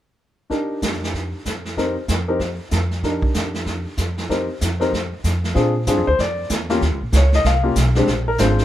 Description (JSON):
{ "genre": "jazz piano trio", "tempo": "190 BPM", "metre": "4/4", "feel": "swing 62% on 8ths", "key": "unclear", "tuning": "A4 = 439 Hz", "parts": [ { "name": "warm baby grand piano", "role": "melody", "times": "0.5-8.6 s", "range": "Ab3 to F5", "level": "-21 LUFS", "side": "left 2 dB", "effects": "plate reverb" }, { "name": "jazz brush drum kit", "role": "drums", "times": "0.5-8.6 s", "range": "brushed snare drum, hi-hat, kick drum, snare drum", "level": "-24 LUFS", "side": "right 1 dB", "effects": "none" }, { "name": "upright bass", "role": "bass", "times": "0.8-8.6 s", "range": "Ab1 to Bb2", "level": "-21 LUFS", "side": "equal", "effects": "none" } ], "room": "light reverb", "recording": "none", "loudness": "-18 LUFS", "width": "side -12 dB against mid", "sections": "0.5-5.5 A section; 5.5-8.6 B section", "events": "none", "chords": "0.5 F13sus4; 5.5 Bb9; 6.8 Eb7sus2 (rootless); 8.1 Bb9" }